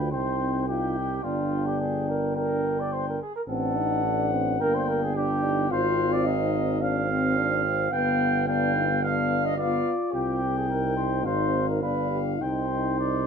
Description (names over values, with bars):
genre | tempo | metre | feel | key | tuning
classical, brass quintet | 108 BPM | 4/4 | rubato | unclear | A4 = 440 Hz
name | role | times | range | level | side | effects
warm trumpet | melody | 0.0-13.3 s | D5 to G5 | -31 LUFS | left 6 dB | none
mellow flugelhorn | second line | 0.0-13.3 s | F4 to G5 | -28 LUFS | right 3 dB | none
warm French horn | accompaniment | 0.0-13.3 s | Bb3 to G4 | -31 LUFS | left 5 dB | none
warm trombone | accompaniment | 0.0-13.3 s | B3 to Eb4 | -33 LUFS | right 3 dB | none
warm tuba | bass | 0.0-13.3 s | G1 to D2 | -28 LUFS | right 2 dB | none
room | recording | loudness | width
moderate studio reverb, RT60 0.7 s | minimal, uncompressed stereo recording | -23 LUFS | side -6 dB against mid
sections
0.0-13.3 A section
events
none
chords
0.1 Cm; 1.2 G5; 3.5 D/A; 4.6 Gm; 5.7 Fm/Ab; 7.9 G7; 10.1 Cm; 11.3 Fm/Ab; 11.8 G7; 12.4 Cm